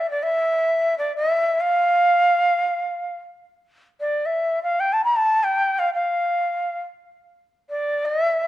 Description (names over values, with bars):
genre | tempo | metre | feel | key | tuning
Persian modal ensemble | free time | none | none | unclear | A4 = 440 Hz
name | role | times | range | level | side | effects
breathy bright ney | solo | 0.0-8.5 s | D5 to B5-46c | -19 LUFS | equal | none
room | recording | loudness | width
moderate recital hall reverb, RT60 1.6 s | dark, warm production | -19 LUFS | side -14 dB against mid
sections
0.0-8.5 A section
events
none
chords
none